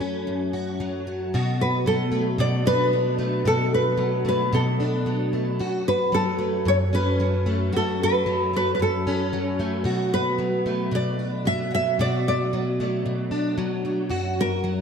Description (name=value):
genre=pop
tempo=113 BPM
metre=4/4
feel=straight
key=B minor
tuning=A4 = 443 Hz
part: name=picked plugged-in steel-string acoustic guitar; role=accompaniment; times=0.0-14.8 s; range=F#2 to F#4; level=-24 LUFS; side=equal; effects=ensemble chorus
part: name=nylon-string guitar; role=melody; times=1.6-14.8 s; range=A4 to E5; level=-24 LUFS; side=equal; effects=wide subtle chorus, diffuse ambient delay
room=wet plate reverb, RT60 3.1 s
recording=dreamy mix soaked in reverb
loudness=-21 LUFS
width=side -6 dB against mid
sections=0.0-1.3 A section; 1.3-14.8 B section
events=none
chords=0.0 F#m; 1.3 Bm7; 5.6 F#m; 9.9 Bm7; 14.1 F#